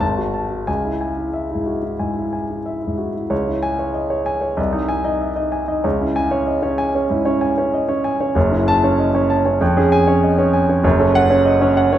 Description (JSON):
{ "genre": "classical, virtuoso piano study", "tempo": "95 BPM", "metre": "4/4", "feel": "rubato", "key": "C# minor", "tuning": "A4 = 438 Hz", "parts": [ { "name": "warm grand piano", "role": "solo", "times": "0.0-12.0 s", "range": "F#1 to A5", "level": "-16 LUFS", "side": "equal", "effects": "none" } ], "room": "wet recital hall reverb, RT60 1.4 s", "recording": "minimal, uncompressed stereo recording", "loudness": "-16 LUFS", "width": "side -11 dB against mid", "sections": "0.0-3.3 A section; 3.3-12.0 B section", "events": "none", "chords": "0.0 F#madd9/G#; 0.7 C#m; 4.6 G#/B#; 5.8 C#m; 8.4 F#m7; 9.6 C#/E#; 10.8 F#m" }